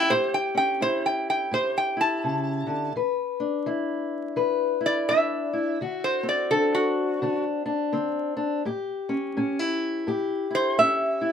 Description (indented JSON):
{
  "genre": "acoustic country blues, solo or duo",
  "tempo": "84 BPM",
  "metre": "4/4",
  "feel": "swing 61% on 8ths",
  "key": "A mixolydian",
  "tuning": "A4 = 440 Hz",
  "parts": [
    { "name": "metal-body resonator slide guitar", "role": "melody", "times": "0.0-11.3 s", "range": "F#4 to A5", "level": "-23 LUFS", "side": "right 1 dB", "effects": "none" },
    { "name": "fingerpicked steel-string acoustic guitar", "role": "accompaniment", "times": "0.0-11.3 s", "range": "A2 to B4", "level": "-26 LUFS", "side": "left 3 dB", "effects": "none" }
  ],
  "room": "moderate studio ambience, RT60 0.5 s",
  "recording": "minimal, uncompressed stereo recording, vinyl crackle",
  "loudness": "-23 LUFS",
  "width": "side -8 dB against mid",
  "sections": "0.0-11.3 A section",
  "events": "resonator guitar played with a steel bar solo 0.0-11.3",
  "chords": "0.0 A7; 3.0 E5; 5.8 D7; 8.6 A7"
}